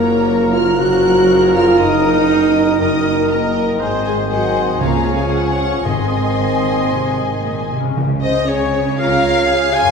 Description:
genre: classical, dramatic, fast romantic movement for symphony orchestra.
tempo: 119 BPM.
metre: 4/4.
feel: rubato.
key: Db major.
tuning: A4 = 439 Hz.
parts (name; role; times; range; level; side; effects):
warm symphonic violin section; melody; 0.0-9.9 s; Db5 to Ab5; -24 LUFS; left 4 dB; none.
clear oboe; second line; 0.0-9.9 s; Bb4 to Ab5; -26 LUFS; right 1 dB; none.
mellow concert flute; second line; 0.0-9.9 s; Ab4 to Bb5; -24 LUFS; equal; none.
warm symphonic violin section; second line; 0.0-9.9 s; Db5 to Gb6; -26 LUFS; left 2 dB; none.
rich symphonic viola section; accompaniment; 0.0-9.9 s; F4 to Eb5; -25 LUFS; left 2 dB; none.
warm bassoon; accompaniment; 0.0-7.7 s; Eb3 to F3; -24 LUFS; equal; none.
dark French horn section; sustained chords; 0.0-9.8 s; Gb3 to Ab4; -17 LUFS; right 1 dB; none.
concert harp; arpeggios; 0.0-9.9 s; Gb2 to A#5; -25 LUFS; left 4 dB; none.
warm symphonic cello section; bass; 0.0-9.9 s; Gb2 to Db3; -25 LUFS; right 2 dB; none.
warm symphonic double bass section; bass; 0.0-9.9 s; Gb1 to Db2; -26 LUFS; right 3 dB; none.
warm tuba; bass; 0.0-7.7 s; Gb1 to Db2; -25 LUFS; right 2 dB; none.
timpani; percussion; 4.8-8.7 s; Ab2 to Db3; -24 LUFS; right 2 dB; none.
room: wet recital hall reverb, RT60 1.5 s.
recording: recorded in a church or concert hall.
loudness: -13 LUFS.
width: side -5 dB against mid.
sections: 0.0-8.0 A section; 8.0-9.9 B section.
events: none.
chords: 0.0 Gbmaj7; 1.8 Ebm/Gb; 3.8 Ab7; 4.8 Db; 5.9 Ab; 8.0 Db.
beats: 0.29 0.79 1.29 | 1.79 2.30 2.80 3.30 | 3.81 4.31 4.82 5.33 | 5.86 6.39 6.92 7.45 | 7.97 8.48 8.99 9.49.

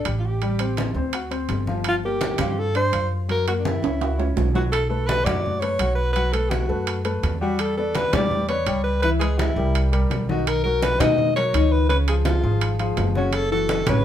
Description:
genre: Afro-Cuban jazz.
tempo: 167 BPM.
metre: 4/4.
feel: straight.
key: unclear.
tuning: A4 = 440 Hz.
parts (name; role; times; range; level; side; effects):
breathy alto saxophone; melody; 0.0-14.0 s; D4 to D#5; -24 LUFS; equal; none.
warm grand piano; accompaniment; 0.0-14.0 s; C#3 to G5; -26 LUFS; left 3 dB; none.
upright bass; bass; 0.1-14.0 s; F#1 to B2; -24 LUFS; right 1 dB; none.
congas; percussion; 0.1-14.0 s; none; -28 LUFS; left 1 dB; none.
timbales; percussion; 0.1-14.0 s; none; -30 LUFS; right 6 dB; none.
room: moderate studio reverb, RT60 0.5 s.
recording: heard from further back in the room.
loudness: -19 LUFS.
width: side -10 dB against mid.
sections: 0.0-4.7 A section; 4.7-14.0 B section.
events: drum fill 3.6-4.7.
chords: 0.4 Am7; 1.1 D7; 1.9 Gm7; 3.3 F#7; 4.7 Bm7; 6.2 B5; 7.6 Em7; 9.0 C#m7; 9.7 C5; 10.5 Bmaj9; 11.9 C#; 13.3 F#m7.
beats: 0.06 | 0.42 0.78 1.14 1.49 | 1.85 2.21 2.57 2.93 | 3.29 3.65 4.00 4.36 | 4.72 5.08 5.44 5.80 | 6.16 6.52 6.88 7.24 | 7.59 7.95 8.31 8.67 | 9.03 9.39 9.75 10.11 | 10.47 10.83 11.19 11.54 | 11.90 12.26 12.62 12.98 | 13.34 13.70.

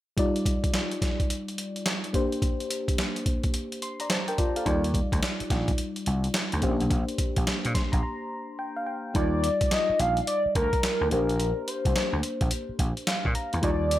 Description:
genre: R&B, new jack swing.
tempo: 107 BPM.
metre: 4/4.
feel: swing 64% on 16ths.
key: Bb major.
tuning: A4 = 440 Hz.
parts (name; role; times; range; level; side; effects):
mellow FM electric piano; accompaniment; 0.2-14.0 s; G3 to C6; -30 LUFS; left 1 dB; chorus.
boom bap sampler-style drum kit; drums; 0.2-14.0 s; handclaps, hi-hat, kick drum, snare drum; -27 LUFS; equal; gated reverb.
vintage slap bass; bass; 4.7-14.0 s; Bb1 to Bb2; -28 LUFS; equal; none.
warm velvety synth lead; melody; 9.2-14.0 s; Bb4 to F5; -27 LUFS; left 1 dB; chorus, tape echo.
room: light reverb.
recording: none.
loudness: -24 LUFS.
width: side -14 dB against mid.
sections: 0.2-9.1 A section; 9.1-14.0 B section.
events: FM electric piano fill 7.5-9.1, 12.8-13.6; break 8.0-9.1.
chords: 0.2 Ebmaj9; 2.1 Bb69; 4.7 Ebmaj9; 6.6 Bb69; 9.1 Ebmaj9; 11.1 Bb69.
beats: | 0.18 0.74 1.30 1.86 | 2.42 2.98 3.54 4.10 | 4.66 5.22 5.78 6.34 | 6.91 7.47 8.03 8.59 | 9.15 9.71 10.27 10.83 | 11.39 11.95 12.51 13.07 | 13.63.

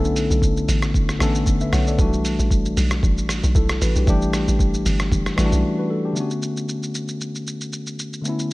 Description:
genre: amapiano.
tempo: 115 BPM.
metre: 4/4.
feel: swing 55% on 16ths.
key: B minor.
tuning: A4 = 440 Hz.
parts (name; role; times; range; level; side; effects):
tine electric piano; accompaniment; 0.0-8.5 s; D3 to F#5; -22 LUFS; left 1 dB; none.
hollow log drum bass; bass; 0.0-5.6 s; G1 to B1; -21 LUFS; equal; none.
lo-fi sampler-style drum kit; drums; 0.0-8.5 s; hi-hat, kick drum, rim click, shaker; -23 LUFS; equal; none.
room: digital ambience.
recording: none.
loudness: -18 LUFS.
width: side -20 dB against mid.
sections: 0.0-6.2 A section; 6.2-8.5 B section.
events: drop 0.0-6.2; break 5.6-6.2.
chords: 0.0 Bm9; 2.0 Em11; 4.1 A7sus4; 6.2 Bm9.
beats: 0.42 0.94 1.47 | 1.99 2.51 3.03 3.55 | 4.07 4.59 5.12 5.64 | 6.16 6.68 7.20 7.73 | 8.25.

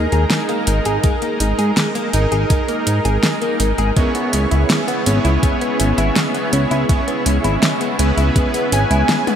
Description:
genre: synthwave.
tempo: 82 BPM.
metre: 4/4.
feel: straight.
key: unclear.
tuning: A4 = 440 Hz.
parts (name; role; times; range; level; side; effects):
analog string pad; sustained chords; 0.0-9.4 s; C#3 to A#4; -24 LUFS; equal; ensemble chorus, sidechain pumping.
direct-recorded clean electric guitar; arpeggios; 0.0-9.4 s; G#3 to G#4; -23 LUFS; left 2 dB; analog chorus, ping-pong delay.
analog synth brass; stabs; 0.0-9.4 s; B3 to C#5; -21 LUFS; right 2 dB; chorus, ping-pong delay.
chorused synth bass; bass; 0.0-9.0 s; G#1 to G#2; -17 LUFS; equal; tube saturation.
pop drum kit; drums; 0.1-9.4 s; hi-hat, snare drum, toms; -21 LUFS; equal; small room ambience.
electronic kick drum; drums; 1.0-8.5 s; none; -16 LUFS; equal; overdrive, small room ambience.
wide unison lead; melody; 8.7-9.4 s; G#5; -19 LUFS; right 1 dB; digital delay.
room: moderate plate reverb, RT60 3.5 s.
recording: bright 1980s-style digital production.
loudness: -14 LUFS.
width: side -8 dB against mid.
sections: 0.0-9.4 A section.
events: drum fill 9.1.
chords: 0.0 G#sus2; 4.0 C#m7.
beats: 0.31 | 1.04 1.77 2.50 3.23 | 3.97 4.70 5.43 6.16 | 6.89 7.62 8.36 9.09.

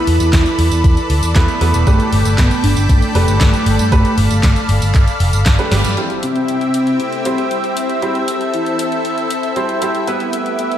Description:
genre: italo disco.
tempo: 117 BPM.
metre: 4/4.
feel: straight.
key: unclear.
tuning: A4 = 440 Hz.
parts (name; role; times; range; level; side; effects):
soft octave-layered synth lead; melody; 0.0-10.8 s; A3 to A4; -20 LUFS; equal; chorus, tremolo, cassette tape, analog delay.
lush unison pad; sustained chords; 0.0-10.8 s; B3 to B5; -20 LUFS; left 1 dB; chorus.
picked electric bass with an envelope filter; bass; 0.1-5.9 s; E1 to G2; -15 LUFS; equal; none.
house drum kit; drums; 0.1-10.8 s; handclaps, hi-hat, snare drum, tambourine; -23 LUFS; equal; small room ambience.
electronic kick drum; drums; 0.3-5.6 s; none; -13 LUFS; equal; small room ambience.
bright baby grand piano; stabs; 1.4-10.8 s; G3 to C5; -22 LUFS; right 2 dB; low-pass filter, analog delay.
room: moderate lush hall reverb, RT60 1.6 s.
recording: dreamy mix soaked in reverb.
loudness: -12 LUFS.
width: side -11 dB against mid.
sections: 0.0-6.0 A section; 6.0-10.8 B section.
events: drum fill 5.7; band accent 5.7.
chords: 0.0 Esus4; 1.9 Gadd9; 6.0 C; 10.1 Em.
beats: 0.33 0.84 1.36 | 1.87 2.38 2.90 3.41 | 3.92 4.43 4.95 5.46 | 5.97 6.48 7.00 7.51 | 8.02 8.54 9.05 9.56 | 10.07 10.59.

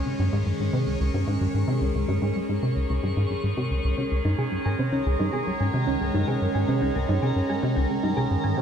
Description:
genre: ambient, sequencer-driven space music.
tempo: 111 BPM.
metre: 4/4.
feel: straight.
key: unclear.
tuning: A4 = 436 Hz.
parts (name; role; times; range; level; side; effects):
evolving wavetable pad; sustained chords; 0.0-8.6 s; Eb3 to Eb5; -28 LUFS; right 1 dB; phaser, built-in reverb.
plucky analog bass; riff; 0.0-8.6 s; Db2 to C3; -25 LUFS; equal; wide subtle chorus, ping-pong delay.
twinkling granular texture; texture; 0.0-8.6 s; Bb4 to Db5; -37 LUFS; left 1 dB; built-in reverb.
thumb-piano-like synth pluck; arpeggios; 4.0-8.6 s; Db4 to Ab5; -30 LUFS; right 1 dB; chorus, auto-pan, ping-pong delay.
room: moderate plate reverb, RT60 2.8 s.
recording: none.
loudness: -22 LUFS.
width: side -8 dB against mid.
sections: 0.0-8.6 A section.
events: filter sweep on analog synth bass 0.0-8.6.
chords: 0.0 Dbsus2.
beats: 0.20 0.74 1.28 | 1.82 2.36 2.90 3.44 | 3.98 4.52 5.06 5.60 | 6.14 6.68 7.22 7.76 | 8.30.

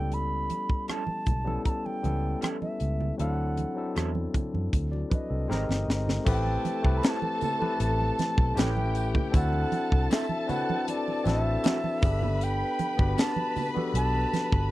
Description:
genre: lush 1970s-style soul.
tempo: 78 BPM.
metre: 4/4.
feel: straight.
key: unclear.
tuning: A4 = 440 Hz.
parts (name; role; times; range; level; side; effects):
alto ocarina; melody; 0.0-14.7 s; D5 to B5; -32 LUFS; right 2 dB; none.
barky tine electric piano; accompaniment; 0.0-14.7 s; F#3 to Bb5; -32 LUFS; left 3 dB; overdrive.
vintage muted fingered electric bass; bass; 0.0-14.7 s; G1 to F#2; -28 LUFS; equal; none.
tight funk drum kit; drums; 0.1-14.7 s; crash cymbal, hi-hat, kick drum, rim click, snare drum; -26 LUFS; equal; none.
congas; percussion; 0.1-14.5 s; none; -36 LUFS; right 5 dB; none.
electric guitar through a small old amp; riff; 0.9-13.3 s; F#3 to B4; -35 LUFS; right 6 dB; none.
warm studio violin section; second line; 6.3-14.7 s; G4 to B5; -36 LUFS; left 2 dB; none.
tambourine; percussion; 6.3-14.5 s; none; -50 LUFS; left 10 dB; none.
room: little or no reverb.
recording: dry, close 1970s-style studio recording.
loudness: -25 LUFS.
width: side -16 dB against mid.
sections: 0.0-6.3 A section; 6.3-14.7 B section.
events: tine electric piano fill 5.1-6.3; drum fill 5.5-6.3.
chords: 0.0 A7; 3.2 D9; 5.5 Abmaj9; 6.3 Am7; 8.6 A7; 9.3 D7; 12.0 Gmaj7.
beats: | 0.11 0.88 1.65 2.42 | 3.19 3.96 4.73 5.50 | 6.27 7.04 7.80 8.57 | 9.34 10.11 10.88 11.65 | 12.41 13.18 13.95.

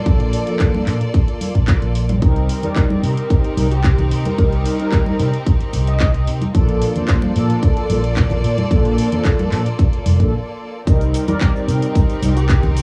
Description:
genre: nu-disco, nu disco.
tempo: 111 BPM.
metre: 4/4.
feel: straight.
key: C dorian.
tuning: A4 = 440 Hz.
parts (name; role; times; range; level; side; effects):
rich studio violin section; sustained chords; 0.0-12.8 s; Bb3 to D5; -30 LUFS; equal; sidechain pumping, cassette tape.
mellow synth brass; accompaniment; 0.1-12.3 s; F3 to D5; -24 LUFS; equal; chorus, cassette tape, tape echo.
fingered electric bass with an envelope filter; bass; 0.1-12.8 s; F1 to C3; -20 LUFS; equal; sidechain pumping.
electronic kick drum; drums; 0.1-12.6 s; none; -18 LUFS; equal; cassette tape.
house drum kit; drums; 0.1-12.8 s; handclaps, hi-hat, shaker; -31 LUFS; equal; cassette tape.
congas; percussion; 0.7-12.7 s; none; -27 LUFS; equal; none.
unison lead; melody; 2.6-6.3, 11.3-12.6 s; G4 to Eb5; -30 LUFS; equal; analog chorus, vintage 12-bit sampler grit, cassette tape, tape echo.
room: little or no reverb.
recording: home recording on cassette, small room ambience.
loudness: -17 LUFS.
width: mono.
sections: 0.0-10.9 A section; 10.9-12.8 B section.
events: break 10.3-10.9; drop 10.9-12.8.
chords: 0.0 Bbmaj7; 2.2 Cm7; 6.5 Bbmaj7; 10.9 Cm7.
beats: | 0.06 0.60 1.14 1.68 | 2.22 2.76 3.31 3.85 | 4.39 4.93 5.47 6.01 | 6.55 7.09 7.63 8.17 | 8.71 9.25 9.79 10.33 | 10.87 11.41 11.95 12.49.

